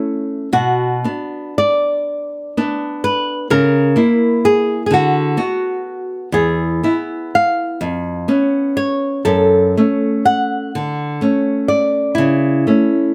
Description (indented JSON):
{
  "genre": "romantic duo for nylon-string guitar and classical guitar",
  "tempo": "41 BPM (dotted quarters)",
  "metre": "6/8",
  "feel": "uneven beats, rubato",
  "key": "unclear",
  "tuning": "A4 = 440 Hz",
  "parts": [
    { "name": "flamenco guitar", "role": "melody", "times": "0.0-13.1 s", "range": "E4 to F#5", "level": "-19 LUFS", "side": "equal", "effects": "none" },
    { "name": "nylon-string guitar", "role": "accompaniment", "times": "0.0-13.1 s", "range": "E2 to F#4", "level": "-19 LUFS", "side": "equal", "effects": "none" }
  ],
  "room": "light reverb",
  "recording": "close, detailed microphones",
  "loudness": "-17 LUFS",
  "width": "mono",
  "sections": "0.0-13.1 A section",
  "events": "none",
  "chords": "0.0 A; 0.5 Bm; 3.5 A#dim/C#; 4.9 Bm/D; 6.3 E; 7.8 C#7/E#; 9.3 F#m; 10.7 Dmaj7; 12.2 A/C#"
}